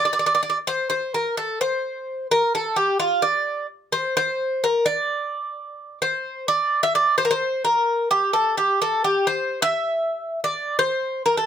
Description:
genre	greek folk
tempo	258 BPM (eighths)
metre	7/8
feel	straight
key	D minor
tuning	A4 = 442 Hz
part	Greek bouzouki	solo	0.0-11.5 s	F4 to E5	-20 LUFS	equal	none
room	moderate small room reverb, RT60 0.6 s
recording	none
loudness	-20 LUFS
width	side -9 dB against mid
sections	0.0-6.5 A section; 6.5-11.5 B section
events	none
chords	none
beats	0.19 0.43 0.66 0.89 1.13 1.36 | 1.59 1.83 2.06 2.29 2.53 2.76 2.99 | 3.23 3.46 3.69 3.92 4.16 4.39 4.62 | 4.86 5.09 5.32 5.55 5.79 6.02 6.25 | 6.48 6.72 6.95 7.18 7.41 7.65 7.88 | 8.11 8.34 8.57 8.81 9.04 9.27 9.50 | 9.73 9.97 10.20 10.43 10.66 10.89 11.12 | 11.36

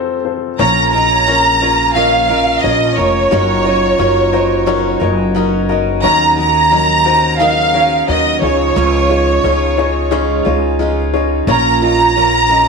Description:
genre	pop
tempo	88 BPM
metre	4/4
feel	straight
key	Bb minor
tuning	A4 = 440 Hz
part	warm upright piano	accompaniment	0.0-12.7 s	F1 to Eb5	-18 LUFS	left 11 dB	none
part	warm studio violin section	melody	0.6-12.7 s	Db5 to Bb5	-13 LUFS	right 2 dB	none
part	dark French horn section	second line	0.6-12.7 s	Db3 to Ab4	-22 LUFS	right 11 dB	none
part	picked steel-string acoustic guitar	riff	0.6-12.7 s	Bb2 to Bb4	-22 LUFS	right 12 dB	none
part	upright bass	bass	0.6-12.7 s	F1 to Eb2	-19 LUFS	equal	none
room	wet echo chamber reverb, RT60 1.3 s, small room reverb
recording	1960s-style stereo with parts hard left and right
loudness	-11 LUFS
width	side -4 dB against mid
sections	0.6-12.7 A section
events	none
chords	0.0 F; 0.6 Bbm; 3.3 Gb6; 6.0 Ebm7; 8.4 Dbadd9; 11.5 Bbm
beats	| 0.59 1.27 1.95 2.63 | 3.31 4.00 4.68 5.36 | 6.04 6.72 7.40 8.08 | 8.76 9.44 10.12 10.80 | 11.48 12.16

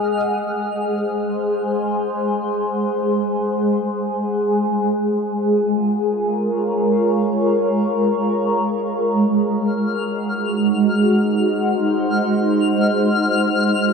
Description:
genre	ambient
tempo	free time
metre	none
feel	none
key	Ab mixolydian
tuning	A4 = 440 Hz
part	shimmering ambient pad	sustained chords	0.0-13.9 s	Ab3 to Gb5	-17 LUFS	equal	chorus, built-in reverb, phaser
part	twinkling granular texture	texture	0.0-0.2, 9.7-13.9 s	F6	-26 LUFS	left 5 dB	built-in reverb
room	wet huge ambient reverb, RT60 8.0 s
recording	dark, warm production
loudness	-17 LUFS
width	side -5 dB against mid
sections	0.2-13.9 A section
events	filter sweep on ambient pad 0.2-13.9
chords	0.2 Ab7; 4.8 Bbm/Ab; 9.3 Ab7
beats	free time

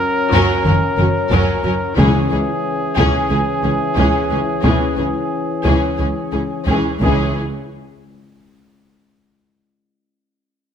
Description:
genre	cinematic, epic orchestral film score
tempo	89 BPM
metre	4/4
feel	straight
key	C# minor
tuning	A4 = 439 Hz
part	dark French horn section	sustained chords	0.0-7.3 s	E3 to C#4	-22 LUFS	left 5 dB	none
part	warm trumpet	stabs	0.0-7.3 s	G#4 to A#4	-22 LUFS	right 2 dB	none
part	dark symphonic violin section	melody	0.3-7.4 s	G#4 to A#4	-25 LUFS	left 3 dB	none
part	rich symphonic violin section	second line	0.3-7.4 s	C#4	-26 LUFS	left 1 dB	none
part	warm symphonic viola section	accompaniment	0.3-7.4 s	E3 to F#3	-25 LUFS	right 1 dB	none
part	rich studio double bass section	bass	0.3-7.4 s	F#1 to C#2	-23 LUFS	right 2 dB	none
part	warm symphonic cello section	bass	0.3-7.4 s	C#2 to F#2	-23 LUFS	right 1 dB	none
part	solo taiko drums	drums	0.3-8.4 s	none	-21 LUFS	left 1 dB	none
part	timpani	percussion	2.0-2.9, 7.0-7.3 s	C#3	-25 LUFS	left 1 dB	none
room	moderate scoring stage reverb, RT60 1.6 s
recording	none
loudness	-14 LUFS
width	side -8 dB against mid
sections	0.0-7.4 A section; 7.4-10.1 B section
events	none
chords	0.0 F#; 2.0 C#m; 7.4 N.C.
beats	0.65 1.31 | 1.97 2.63 3.30 3.96 | 4.64 5.31 5.99 6.67 | 7.36 8.05

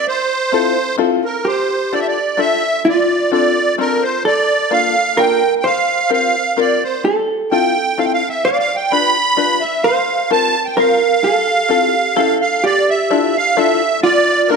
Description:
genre	musette waltz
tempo	129 BPM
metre	3/4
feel	straight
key	F major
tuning	A4 = 440 Hz
part	musette accordion	melody	0.0-14.6 s	Bb4 to B5	-15 LUFS	right 3 dB	none
part	open-back banjo	accompaniment	0.5-14.6 s	Bb3 to B4	-18 LUFS	left 7 dB	none
part	vintage hollow-body jazz guitar	second line	1.4-14.6 s	F4 to D5	-18 LUFS	right 2 dB	none
room	moderate recital hall reverb, RT60 1.4 s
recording	none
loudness	-13 LUFS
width	side -5 dB against mid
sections	0.0-1.5 A section; 1.5-12.6 A section; 12.6-14.6 B section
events	none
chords	0.1 Fmaj7; 1.5 F69; 2.9 Dm7; 4.2 Bbmaj7; 5.6 C7sus4; 7.0 Fmaj7; 8.5 G7; 9.8 C7sus4; 11.2 Fmaj7; 12.2 A7; 12.6 Dmadd9; 14.0 Bbmaj7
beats	| 0.06 0.52 0.99 | 1.46 1.93 2.39 | 2.86 3.32 3.79 | 4.25 4.71 5.17 | 5.64 6.10 6.58 | 7.05 7.52 7.98 | 8.45 8.92 9.38 | 9.84 10.30 10.77 | 11.23 11.70 12.17 | 12.64 13.11 13.57 | 14.03 14.49

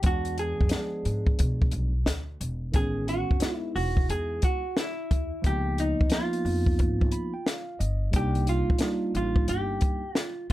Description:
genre	hip hop, jazz-hop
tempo	89 BPM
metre	4/4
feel	swing 64% on 16ths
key	unclear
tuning	A4 = 440 Hz
part	tine electric piano	accompaniment	0.0-10.0 s	D#3 to Cb6	-33 LUFS	right 1 dB	phaser, plate reverb
part	upright bass	bass	0.0-10.5 s	E1 to B2	-29 LUFS	equal	none
part	compact cocktail drum kit	drums	0.0-10.5 s	hi-hat, kick drum, snare drum	-26 LUFS	equal	none
part	vintage hollow-body jazz guitar	melody	0.1-10.5 s	Eb4 to G#4	-31 LUFS	right 1 dB	none
room	light reverb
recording	dark, warm production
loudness	-24 LUFS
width	side -16 dB against mid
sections	0.0-10.5 A section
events	tine electric piano fill 6.8-8.1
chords	0.0 E7b9; 2.7 Amaj9#11; 5.4 Db13; 8.1 Cm7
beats	| 0.04 0.72 1.39 2.07 | 2.74 3.42 4.09 4.76 | 5.44 6.11 6.79 7.46 | 8.13 8.81 9.48 10.16

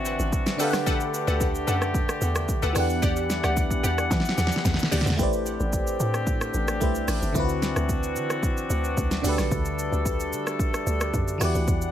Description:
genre	amapiano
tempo	111 BPM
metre	4/4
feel	straight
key	G major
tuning	A4 = 440 Hz
part	FM electric piano	accompaniment	0.0-11.9 s	D3 to F#5	-29 LUFS	equal	chorus, phaser
part	warm brass ensemble	sustained chords	0.0-11.9 s	D3 to F#5	-30 LUFS	left 2 dB	none
part	hollow log drum bass	bass	0.0-11.9 s	G1 to E3	-28 LUFS	equal	none
part	deep house drum kit	drums	0.1-11.9 s	hi-hat, kick drum, rim click, shaker, snare drum	-27 LUFS	equal	none
part	glassy wavetable pluck	stabs	0.6-5.1 s	G4 to F#5	-31 LUFS	left 2 dB	chorus, digital delay
room	little or no reverb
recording	none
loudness	-22 LUFS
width	side -10 dB against mid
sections	0.0-5.2 A section; 5.2-11.9 B section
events	drop 0.0-5.2; drum fill 4.1-5.2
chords	0.0 D13; 0.6 Gmaj9/D; 2.8 Em9; 5.2 Am11; 7.4 D13; 9.2 Gmaj9; 11.4 Em9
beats	0.33 | 0.86 1.41 1.95 2.49 | 3.03 3.57 4.11 4.65 | 5.19 5.73 6.27 6.81 | 7.35 7.89 8.43 8.97 | 9.51 10.05 10.60 11.14 | 11.68

